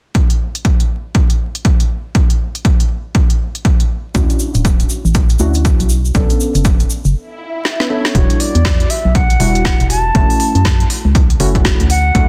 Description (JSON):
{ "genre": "deep house", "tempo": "120 BPM", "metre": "4/4", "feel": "swing 61% on 16ths", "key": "E dorian", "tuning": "A4 = 440 Hz", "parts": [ { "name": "deep house drum kit", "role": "drums", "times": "0.1-12.3 s", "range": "hi-hat, snare drum", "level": "-23 LUFS", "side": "equal", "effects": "none" }, { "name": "electronic kick drum", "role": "drums", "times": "0.1-12.3 s", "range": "none", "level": "-15 LUFS", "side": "equal", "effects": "none" }, { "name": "deep mellow chord stab", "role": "stabs", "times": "4.1-12.3 s", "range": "G3 to B4", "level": "-23 LUFS", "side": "equal", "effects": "chorus, sidechain pumping, tape echo" }, { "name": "organ-like FM bass", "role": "bass", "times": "4.1-12.3 s", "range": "D1 to F#2", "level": "-17 LUFS", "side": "equal", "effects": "tube saturation, sidechain pumping" }, { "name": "tube shaker", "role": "percussion", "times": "4.2-7.1 s", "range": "none", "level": "-29 LUFS", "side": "equal", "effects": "none" }, { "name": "swell", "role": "sound effects", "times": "7.3-8.1 s", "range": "none", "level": "-27 LUFS", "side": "equal", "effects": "none" }, { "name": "mellow silver concert flute", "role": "melody", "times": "7.9-12.3 s", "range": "C#5 to A5", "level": "-21 LUFS", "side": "equal", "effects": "tape echo" } ], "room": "little or no reverb", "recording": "dense, heavily limited modern master, vinyl crackle", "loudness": "-14 LUFS", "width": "mono", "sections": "0.1-8.1 A section; 8.1-12.3 B section", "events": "break 7.1-8.1; swell 7.3-8.1; drum fill 7.6-8.1", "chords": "0.1 N.C.; 3.9 Dmaj9; 5.9 Bm9; 8.1 Em9; 10.1 F#m7" }